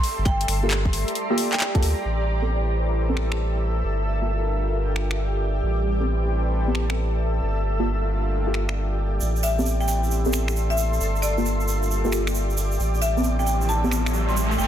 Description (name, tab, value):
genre	UK garage, two-step garage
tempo	134 BPM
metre	4/4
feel	swing 67% on 16ths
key	A minor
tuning	A4 = 445 Hz
part	marimba with medium hard mallets	melody	0.0-2.0, 9.4-14.7 s	D5 to C6	-29 LUFS	left 1 dB	ping-pong delay
part	house drum kit	drums	0.0-14.1 s	finger snaps, handclaps, hi-hat	-29 LUFS	left 1 dB	overdrive
part	granular cloud pad	texture	0.0-14.7 s	G4 to C6	-29 LUFS	equal	built-in reverb, sidechain pumping
part	saturated sub bass	bass	0.2-14.7 s	G1 to D2	-24 LUFS	equal	none
part	electronic kick drum	drums	0.3-1.8 s	none	-21 LUFS	equal	overdrive
part	deep mellow chord stab	stabs	0.6-14.0 s	Bb3 to A4	-28 LUFS	equal	chorus, phaser, ping-pong delay
part	airy breathy pad	sustained chords	2.4-14.7 s	Bb3 to C5	-34 LUFS	equal	chorus, sidechain pumping
part	egg shaker	percussion	9.2-14.7 s	none	-32 LUFS	right 6 dB	none
part	riser	sound effects	13.3-14.7 s	none	-29 LUFS	equal	none
room	light reverb, digital ambience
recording	dense, heavily limited modern master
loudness	-21 LUFS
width	side -10 dB against mid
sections	0.0-2.0 A section; 2.0-14.7 B section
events	filter sweep on analog synth pad 2.0-14.7; riser 13.3-14.7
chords	0.3 Gm9; 2.0 Am9; 3.8 Gm9; 5.6 Am9; 7.4 Gm9; 9.2 Am9; 11.0 Gm9; 12.8 Am9